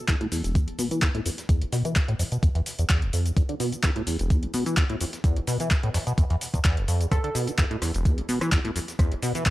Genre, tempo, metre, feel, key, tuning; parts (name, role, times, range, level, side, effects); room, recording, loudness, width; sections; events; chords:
acid house; 128 BPM; 4/4; swing 53% on 16ths; A4 = 440 Hz
liquid acid bass; riff; 0.1-9.4 s; E1 to E3; -26 LUFS; equal; phaser, overdrive, analog chorus, sidechain pumping, tape echo
booming analog drum machine; drums; 0.1-9.5 s; cabasa, handclaps, hi-hat, rim click; -30 LUFS; equal; overdrive
dusty soul sampler-style drum kit; drums; 0.1-9.5 s; hi-hat, snare drum; -40 LUFS; equal
electronic kick drum; drums; 0.1-9.5 s; -22 LUFS; equal
glassy wavetable pluck; melody; 7.1-7.3 s; A4; -37 LUFS; right 3 dB; chorus, tape echo
light reverb; dry, gritty hardware recording, cassette tape; -22 LUFS; side -16 dB against mid
0.0-9.5 A section
filter sweep on acid bass 0.0-9.5
0.0 E5